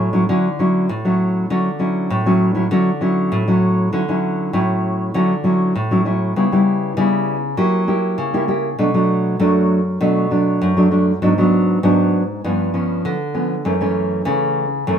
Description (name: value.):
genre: samba.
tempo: 99 BPM.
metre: 4/4.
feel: straight.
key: D major.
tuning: A4 = 440 Hz.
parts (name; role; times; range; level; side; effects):
nylon-string guitar; solo; 0.0-15.0 s; F#2 to G4; -15 LUFS; equal; none.
room: moderate studio reverb, RT60 0.7 s.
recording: none.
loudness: -15 LUFS.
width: side -8 dB against mid.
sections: 0.0-3.9 A section; 3.9-15.0 B section.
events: none.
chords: 0.0 Dmaj9; 6.4 C#m7b5; 7.6 F#7b9; 8.8 Bm7; 11.2 G#m7b5; 12.4 G7#11; 13.6 F#m7.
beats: 0.28 0.89 | 1.50 2.10 2.71 3.32 | 3.93 4.53 5.14 5.75 | 6.36 6.96 7.57 8.18 | 8.79 9.39 10.00 10.61 | 11.22 11.82 12.43 13.04 | 13.65 14.26 14.86.